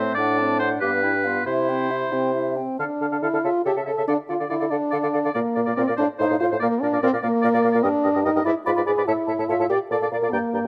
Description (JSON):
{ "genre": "quick classical-period movement for wind quintet", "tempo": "89-99 BPM (dotted quarters)", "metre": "6/8", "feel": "rubato", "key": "D minor", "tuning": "A4 = 440 Hz", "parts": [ { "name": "mellow hollow silver concert flute", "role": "melody", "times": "0.0-10.6 s", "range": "E5 to B5", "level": "-34 LUFS", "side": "equal", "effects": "none" }, { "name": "warm oboe", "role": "second line", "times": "0.0-10.7 s", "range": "B4 to G5", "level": "-30 LUFS", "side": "equal", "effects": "none" }, { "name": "clear French horn", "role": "accompaniment", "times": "0.0-10.7 s", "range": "A3 to Bb4", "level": "-25 LUFS", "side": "equal", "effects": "none" }, { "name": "clear clarinet", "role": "accompaniment", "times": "0.0-10.6 s", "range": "C4 to D5", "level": "-35 LUFS", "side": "equal", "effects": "none" }, { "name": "mellow bassoon", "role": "bass", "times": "0.0-10.7 s", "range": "G2 to D3", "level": "-29 LUFS", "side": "equal", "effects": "none" } ], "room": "light reverb", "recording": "close, detailed microphones", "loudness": "-22 LUFS", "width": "mono", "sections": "0.0-2.8 A section; 2.8-10.7 B section", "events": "none", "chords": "0.2 D7/A; 0.8 G7; 1.5 C; 2.8 Dm; 3.4 A; 4.1 Dm; 5.4 Bb; 6.0 F; 6.6 Bb; 7.8 Eb; 8.5 G#dim; 9.1 A; 9.7 Bb" }